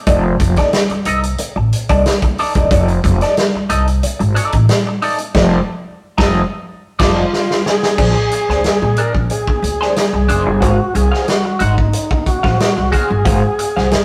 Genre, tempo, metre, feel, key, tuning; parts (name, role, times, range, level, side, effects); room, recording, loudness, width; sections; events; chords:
funk; 91 BPM; 4/4; straight; A4 = 441 Hz
electric guitar at the edge of break-up; accompaniment; 0.1-13.9 s; D4 to Gb5; -22 LUFS; equal; wah
upright bass; bass; 0.1-14.0 s; E1 to Bb2; -18 LUFS; equal
vintage drum kit; drums; 0.1-14.0 s; crash cymbal, hi-hat, kick drum, snare drum; -20 LUFS; equal
tonewheel organ; melody; 7.0-14.0 s; Eb4 to Bb4; -21 LUFS; equal; overdrive, stopped rotary speaker
moderate stone room reverb, RT60 1.2 s; rough rehearsal-room recording; -15 LUFS; mono
0.0-8.0 A section; 8.0-14.0 B section
band accent 5.3-8.0; drum fill 7.3-8.0
0.0 F6; 8.0 Bb9; 10.6 Ab13